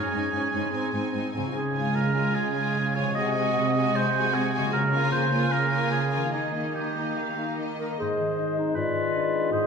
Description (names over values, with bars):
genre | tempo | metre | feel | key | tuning
classical, dramatic, fast romantic movement for symphony orchestra | 142-160 BPM | 4/4 | rubato | Ab major from 4.7 s | A4 = 440 Hz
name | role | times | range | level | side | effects
warm symphonic violin section | melody | 0.0-8.0 s | Eb5 to Ab5 | -35 LUFS | left 2 dB | none
rich symphonic violin section | second line | 0.0-8.0 s | Eb4 to Gb4 | -34 LUFS | left 3 dB | none
warm oboe | second line | 0.0-9.7 s | G4 to Eb5 | -28 LUFS | right 2 dB | none
warm symphonic viola section | accompaniment | 0.0-8.0 s | Ab3 to Db4 | -32 LUFS | right 2 dB | none
concert harp | arpeggios | 0.0-9.7 s | Ab2 to Ab4 | -32 LUFS | left 5 dB | none
warm symphonic cello section | bass | 0.1-7.9 s | Ab2 to Eb3 | -31 LUFS | right 4 dB | none
warm clarinet | second line | 7.8-9.7 s | Eb4 to Bb4 | -29 LUFS | left 1 dB | none
mellow hollow silver concert flute | second line | 8.0-9.7 s | D5 to Eb5 | -32 LUFS | left 3 dB | none
mellow bassoon | accompaniment | 8.0-9.7 s | Ab3 | -28 LUFS | left 1 dB | none
room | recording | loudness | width
wet concert hall reverb, RT60 2.0 s | minimal, uncompressed stereo recording | -23 LUFS | side -6 dB against mid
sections
0.0-8.0 A section; 8.0-9.7 B section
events
none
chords
0.0 Absus4; 0.7 Ab; 1.6 Db; 3.2 Ab7/C; 4.7 Bbm7/Db; 6.3 Eb; 8.0 Ab; 8.8 Abdim7